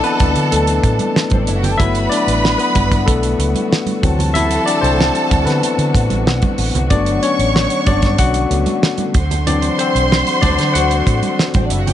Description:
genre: lush 1970s-style soul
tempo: 94 BPM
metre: 4/4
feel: straight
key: unclear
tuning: A4 = 441 Hz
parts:
  - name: warm studio violin section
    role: second line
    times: 0.0-11.9 s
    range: C4 to C#6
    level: -20 LUFS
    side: right 1 dB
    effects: none
  - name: barky tine electric piano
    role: accompaniment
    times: 0.0-11.9 s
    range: E3 to F#5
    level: -18 LUFS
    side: left 4 dB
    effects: overdrive
  - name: muted studio string section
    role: sustained chords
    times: 0.0-11.9 s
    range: C3 to A4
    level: -26 LUFS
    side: left 1 dB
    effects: none
  - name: damped 70s drum kit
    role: drums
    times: 0.0-11.9 s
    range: hi-hat, kick drum, snare drum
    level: -18 LUFS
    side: right 1 dB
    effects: none
  - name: vintage muted fingered electric bass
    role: bass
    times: 0.2-11.9 s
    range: F#1 to D3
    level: -18 LUFS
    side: right 1 dB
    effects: none
  - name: congas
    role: percussion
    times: 0.2-11.9 s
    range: none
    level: -25 LUFS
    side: right 5 dB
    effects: none
room: small room ambience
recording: nothing above 10.9 kHz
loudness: -13 LUFS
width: side -11 dB against mid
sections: 0.0-11.9 A section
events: tine electric piano solo 0.0-11.9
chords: 0.0 D7; 1.8 Gmaj9; 4.0 D7; 6.9 Gmaj9; 9.1 D7

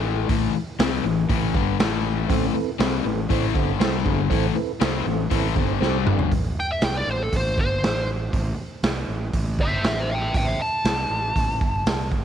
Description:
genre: blues rock power trio and southern rock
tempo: 119 BPM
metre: 4/4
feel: straight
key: A minor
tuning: A4 = 439 Hz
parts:
  - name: overdriven semi-hollow guitar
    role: riff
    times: 0.0-6.3 s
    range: G2 to C4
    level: -24 LUFS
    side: left 13 dB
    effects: none
  - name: fuzz fingered electric bass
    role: bass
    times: 0.0-12.2 s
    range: G1 to C2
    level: -27 LUFS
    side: right 1 dB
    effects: overdrive
  - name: raw garage drum kit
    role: drums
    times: 0.3-12.2 s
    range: hi-hat, kick drum, snare drum, toms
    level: -24 LUFS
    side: right 1 dB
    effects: none
  - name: mellow tonewheel organ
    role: sustained chords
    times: 2.3-6.2 s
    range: C4 to D5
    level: -28 LUFS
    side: right 11 dB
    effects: chorus vibrato, wide subtle chorus
  - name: fuzz lead guitar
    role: melody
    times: 6.6-12.1 s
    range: A4 to A5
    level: -25 LUFS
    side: equal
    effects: wah, distortion, tape echo
room: light reverb, small room ambience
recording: 1960s-style stereo with parts hard left and right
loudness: -20 LUFS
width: side -9 dB against mid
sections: 0.0-6.3 A section; 6.3-12.2 B section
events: drum fill 5.8-6.3; lead electric guitar solo 6.3-12.2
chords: 0.0 Am

